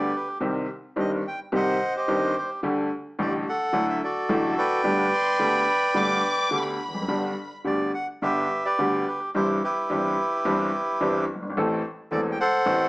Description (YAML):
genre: tango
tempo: 108 BPM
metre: 4/4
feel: rubato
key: G major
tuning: A4 = 440 Hz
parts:
  - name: bandoneon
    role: melody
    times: 0.0-12.9 s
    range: E4 to G5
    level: -24 LUFS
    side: right 1 dB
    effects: none
  - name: bright upright piano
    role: accompaniment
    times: 0.0-12.9 s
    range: E1 to A4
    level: -26 LUFS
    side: equal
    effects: none
  - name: warm chamber violin section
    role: second line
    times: 5.1-7.5 s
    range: B5 to D6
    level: -29 LUFS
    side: left 1 dB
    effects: none
room: moderate studio reverb, RT60 0.9 s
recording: small speaker sound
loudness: -22 LUFS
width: side -22 dB against mid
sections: 0.0-12.9 A section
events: none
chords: 0.4 Cm; 2.6 Dsus4; 3.7 Dadd9; 4.8 Gadd9; 7.1 G; 9.3 C/G; 11.6 Am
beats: | 0.42 0.98 1.53 2.09 | 2.64 3.19 3.75 4.30 | 4.85 5.40 5.96 6.53 | 7.09 7.66 8.22 8.78 | 9.34 9.90 10.45 11.00 | 11.55 12.11 12.66